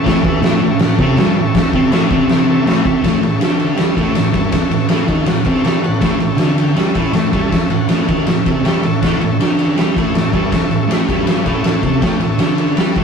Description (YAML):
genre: garage rock duo or trio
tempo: 160 BPM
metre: 4/4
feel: straight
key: A major, A mixolydian from 3.0 s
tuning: A4 = 440 Hz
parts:
  - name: combo organ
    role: sustained chords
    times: 0.0-13.0 s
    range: A4 to G5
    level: -24 LUFS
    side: left 2 dB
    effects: none
  - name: fuzz guitar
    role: riff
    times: 0.0-13.0 s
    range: G2 to G4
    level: -16 LUFS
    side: equal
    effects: distortion
  - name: oversized low-tuned drum kit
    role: drums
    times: 0.1-13.0 s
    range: crash cymbal, kick drum, ride cymbal, snare drum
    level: -15 LUFS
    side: equal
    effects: none
room: moderate studio reverb, RT60 0.7 s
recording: rough rehearsal-room recording, warm saturation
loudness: -12 LUFS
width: side -6 dB against mid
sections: 0.0-3.0 A section; 3.0-13.0 B section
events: none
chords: 0.0 A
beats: | 0.07 0.44 0.81 1.18 | 1.55 1.92 2.30 2.67 | 3.04 3.41 3.79 4.16 | 4.53 4.91 5.28 5.66 | 6.03 6.40 6.78 7.15 | 7.53 7.90 8.28 8.65 | 9.03 9.40 9.78 10.16 | 10.53 10.91 11.28 11.66 | 12.03 12.41 12.78